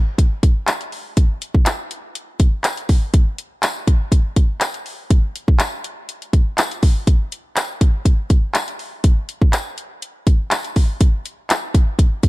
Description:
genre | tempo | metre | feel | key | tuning
pop | 122 BPM | 4/4 | straight | none | none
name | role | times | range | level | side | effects
house drum kit | drums | 0.2-12.3 s | handclaps, hi-hat, kick drum | -15 LUFS | equal | none
tambourine | percussion | 0.7-11.6 s | none | -30 LUFS | left 6 dB | none
room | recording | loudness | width
digital ambience | dark, warm production | -16 LUFS | side -20 dB against mid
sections
0.0-12.3 A section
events
none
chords
none

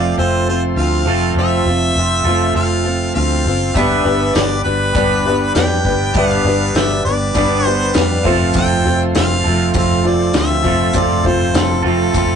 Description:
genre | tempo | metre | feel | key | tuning
folk rock and heartland rock | 100 BPM | 4/4 | straight | unclear | A4 = 441 Hz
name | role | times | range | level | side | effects
bright harmonica | melody | 0.0-12.4 s | A4 to G5 | -20 LUFS | left 1 dB | none
picked swing-style acoustic guitar | accompaniment | 0.0-12.4 s | G2 to B4 | -19 LUFS | left 2 dB | none
bright tonewheel organ | sustained chords | 0.0-12.4 s | F4 to C6 | -30 LUFS | right 1 dB | none
twangy electric guitar | riff | 0.0-12.4 s | F3 to B4 | -20 LUFS | right 5 dB | vibrato effect
fingered electric bass | bass | 0.0-12.4 s | F1 to F2 | -19 LUFS | equal | none
warm grand piano | accompaniment | 3.8-12.2 s | F4 to E5 | -26 LUFS | left 1 dB | none
vintage drum kit | drums | 3.8-12.3 s | hi-hat, kick drum, snare drum | -20 LUFS | left 1 dB | none
room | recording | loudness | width
moderate small room ambience, RT60 0.5 s | rough rehearsal-room recording, tube saturation, nothing above 10.4 kHz | -13 LUFS | side -7 dB against mid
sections
0.0-12.4 A section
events
none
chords
0.0 F; 3.8 G; 8.2 F

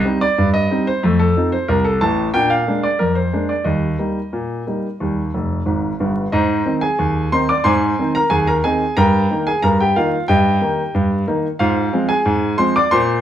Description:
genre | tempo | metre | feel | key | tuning
ragtime piano | 91 BPM | 2/4 | straight | Eb major | A4 = 442 Hz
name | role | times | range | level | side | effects
warm grand piano | solo | 0.0-13.2 s | F1 to D6 | -15 LUFS | equal | none
room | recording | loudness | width
wet club reverb, RT60 0.8 s | heard from further back in the room, vinyl crackle | -15 LUFS | side -10 dB against mid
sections
0.0-6.3 A section; 6.3-13.2 B section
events
grand piano fill 5.3-6.3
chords
0.0 Cm; 1.0 F7; 2.3 Bb7; 3.7 Eb; 6.3 Ab; 9.0 Eb/G; 11.6 Fm/Ab

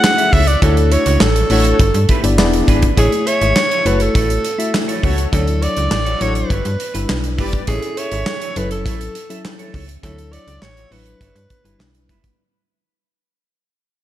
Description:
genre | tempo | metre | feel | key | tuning
early-eighties boogie funk | 102 BPM | 4/4 | straight | unclear | A4 = 440 Hz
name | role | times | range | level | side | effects
breathy alto saxophone | melody | 0.0-12.1 s | G#4 to F#5 | -19 LUFS | right 1 dB | slapback echo
mellow tine electric piano | accompaniment | 0.0-12.2 s | F#3 to E5 | -22 LUFS | left 2 dB | none
clean electric guitar | riff | 0.0-12.3 s | D4 to E5 | -28 LUFS | right 3 dB | wide subtle chorus, slapback echo
modern studio drum kit | drums | 0.0-12.4 s | handclaps, hi-hat, kick drum, snare drum | -18 LUFS | equal | none
slap-like FM bass | bass | 0.3-12.3 s | E1 to G2 | -18 LUFS | equal | none
analog synth brass | second line | 0.6-7.6 s | F#4 to D5 | -28 LUFS | left 2 dB | chorus, slapback echo
room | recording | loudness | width
light reverb, small room ambience | none | -13 LUFS | side -13 dB against mid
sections
0.0-3.0 A section; 3.0-12.4 B section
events
band accent 0.6-3.0; fade-out 3.0-12.4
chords
0.0 F#m7; 0.6 Dmaj9; 1.8 G6; 2.4 E7; 3.0 Amaj7; 3.9 F#m7; 5.3 Dmaj9; 6.5 G6; 7.7 Amaj7; 8.6 F#m7; 10.0 Dmaj9; 11.2 G6

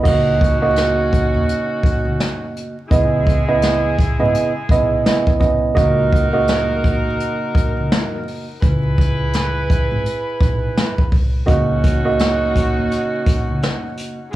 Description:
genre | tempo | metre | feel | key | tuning
hip hop, boom-bap hip-hop | 84 BPM | 4/4 | swing 58% on 16ths | unclear | A4 = 439 Hz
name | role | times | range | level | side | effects
tine electric piano | accompaniment | 0.0-14.2 s | C#3 to D#5 | -18 LUFS | right 3 dB | high-pass filter, low-pass filter
clear horn section | stabs | 0.1-14.4 s | G#3 to B4 | -25 LUFS | equal | high-pass filter, low-pass filter, analog delay
upright bass | bass | 0.1-13.6 s | G#1 to D#2 | -22 LUFS | equal | tube saturation
jazz brush drum kit | drums | 0.1-14.2 s | crash cymbal, hi-hat, kick drum, snare drum | -18 LUFS | equal | none
sleigh bells | percussion | 11.5-14.4 s | none | -38 LUFS | equal | none
room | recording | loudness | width
small room ambience | dry, gritty hardware recording, vinyl crackle | -15 LUFS | side -15 dB against mid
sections
0.1-14.4 A section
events
none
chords
0.1 D#m7/C#; 2.9 C#m9; 5.8 D#m7/C#; 8.6 C#m7; 11.5 D#m7/C#

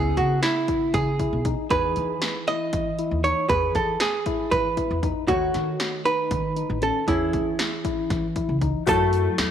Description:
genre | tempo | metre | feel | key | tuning
progressive instrumental, band music in an uneven meter | 234 BPM (eighths) | 7/8 | straight | E major | A4 = 440 Hz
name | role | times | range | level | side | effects
archtop guitar, miked and amplified | melody | 0.0-9.5 s | E4 to D#5 | -24 LUFS | right 4 dB | none
hollow-body jazz guitar | accompaniment | 0.0-9.5 s | C#3 to C#5 | -32 LUFS | equal | double-tracked left and right
tine electric piano | arpeggios | 0.0-9.3 s | C#4 to G#4 | -29 LUFS | left 9 dB | slow stereo tremolo, slapback echo
upright bass | bass | 0.0-9.5 s | A1 to E3 | -27 LUFS | equal | none
punchy analog drum machine | drums | 0.2-9.5 s | hi-hat, kick drum, snare drum | -29 LUFS | equal | none
clean electric guitar | second line | 8.9-9.5 s | A3 | -31 LUFS | left 8 dB | analog chorus
egg shaker | percussion | 8.9-9.5 s | none | -44 LUFS | left 13 dB | none
room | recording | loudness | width
moderate echo chamber reverb, RT60 2.1 s | 1960s-style stereo | -21 LUFS | side -9 dB against mid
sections
0.0-8.9 A section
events
none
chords
0.0 C#m7; 1.7 Emaj7; 5.3 B7/D#; 7.1 E6; 8.9 F#m7

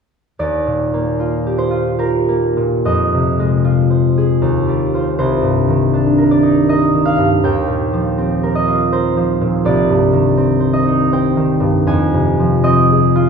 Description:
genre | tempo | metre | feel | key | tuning
classical, solo harp piece | 68-83 BPM | 3/4 | rubato | Eb major | A4 = 439 Hz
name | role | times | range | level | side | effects
concert harp | solo | 0.4-13.3 s | C2 to Ab5 | -12 LUFS | equal | none
room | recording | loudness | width
wet recital hall reverb, RT60 1.3 s | heard from further back in the room | -13 LUFS | side -6 dB against mid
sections
0.4-13.3 A section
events
none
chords
0.4 Ebmaj9; 2.9 Fm7; 4.4 Eb69; 5.2 Cm9; 7.4 Eb69; 9.7 Cmadd9; 11.9 Fm7

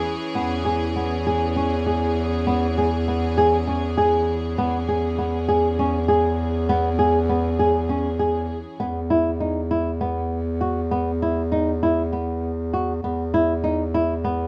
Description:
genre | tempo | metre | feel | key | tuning
contemporary instrumental, chamber music in an uneven meter | 199 BPM (eighths) | 7/8 | straight | E major | A4 = 440 Hz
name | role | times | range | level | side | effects
rich studio string section | sustained chords | 0.0-8.8 s | E3 to G#4 | -33 LUFS | equal | none
flamenco guitar | arpeggios | 0.0-14.5 s | B3 to G#4 | -25 LUFS | equal | none
breathy bass clarinet | bass | 0.0-14.5 s | E2 | -26 LUFS | equal | none
room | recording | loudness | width
light reverb | close, detailed microphones | -22 LUFS | mono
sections
0.0-8.8 A section; 8.8-14.5 B section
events
none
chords
0.0 E6; 8.8 E5

